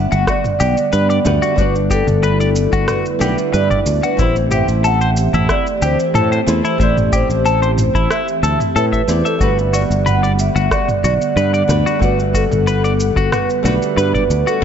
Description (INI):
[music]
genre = sunset chillout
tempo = 92 BPM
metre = 4/4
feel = straight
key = G major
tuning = A4 = 440 Hz
[part]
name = vibraphone with soft mallets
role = melody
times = 0.0-14.6 s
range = A4 to F#5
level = -19 LUFS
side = right 3 dB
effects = digital delay
[part]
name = flamenco guitar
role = accompaniment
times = 0.0-14.6 s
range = G3 to B5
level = -24 LUFS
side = moving between left 7 dB and right 4 dB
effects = auto-pan, digital delay
[part]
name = airy breathy pad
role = sustained chords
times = 0.0-14.6 s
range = D3 to F#5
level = -23 LUFS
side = equal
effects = chorus
[part]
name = sustaining fretless electric bass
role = bass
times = 0.0-14.4 s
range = G1 to A2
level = -17 LUFS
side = equal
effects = none
[part]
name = twelve-string electric guitar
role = arpeggios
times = 0.1-14.6 s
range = E4 to E5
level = -21 LUFS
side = left 5 dB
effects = digital delay
[part]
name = deep house drum kit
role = drums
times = 0.1-14.6 s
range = rim click, shaker, toms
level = -24 LUFS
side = right 1 dB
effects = none
[part]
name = electronic kick drum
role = drums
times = 0.3-14.3 s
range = none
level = -21 LUFS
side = equal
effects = none
[sound]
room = light reverb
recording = nothing above 7.8 kHz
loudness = -13 LUFS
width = side -8 dB against mid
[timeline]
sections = 0.0-14.6 A section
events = none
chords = 0.0 Gmaj7; 4.2 Am7; 9.4 Gmaj7